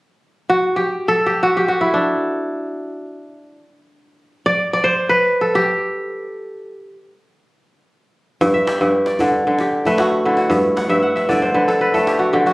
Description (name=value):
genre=west african traditional, West African string and xylophone music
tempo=free time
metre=none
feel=none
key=G major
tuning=A4 = 441 Hz
part: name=kora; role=arpeggios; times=0.5-12.5 s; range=G2 to F#5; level=-15 LUFS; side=equal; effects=none
part: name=djembe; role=percussion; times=8.4-12.5 s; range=none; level=-27 LUFS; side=equal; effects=none
room=light reverb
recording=recorded on a phone in the room, studio reverb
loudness=-15 LUFS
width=side -22 dB against mid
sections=0.1-8.4 A section; 8.4-12.5 B section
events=kora solo 0.1-8.4; kora fill 10.8-12.5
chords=0.1 N.C.; 8.4 G5; 9.5 D; 10.5 G5; 11.6 D5